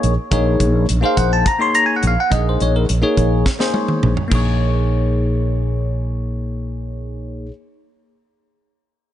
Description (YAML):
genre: electric jazz fusion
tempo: 210 BPM (eighths)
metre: 7/8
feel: straight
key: Bb minor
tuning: A4 = 441 Hz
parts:
  - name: bell-like tine electric piano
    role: accompaniment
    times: 0.0-7.5 s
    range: Bb3 to C6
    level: -19 LUFS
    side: left 1 dB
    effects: phaser
  - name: fretless electric bass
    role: bass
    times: 0.0-7.5 s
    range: Bb1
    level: -18 LUFS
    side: equal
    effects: lush chorus
  - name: crisp fusion drum kit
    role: drums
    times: 0.0-4.5 s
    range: crash cymbal, hi-hat, kick drum, snare drum, toms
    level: -21 LUFS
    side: right 1 dB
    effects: none
room: light reverb, small room reverb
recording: nothing above 10.4 kHz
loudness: -15 LUFS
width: side -11 dB against mid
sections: 0.0-4.3 A section; 4.3-8.3 B section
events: drum fill 3.5-4.3; tine electric piano fill 3.5-4.3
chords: 0.0 Bbm11; 4.3 Bbm7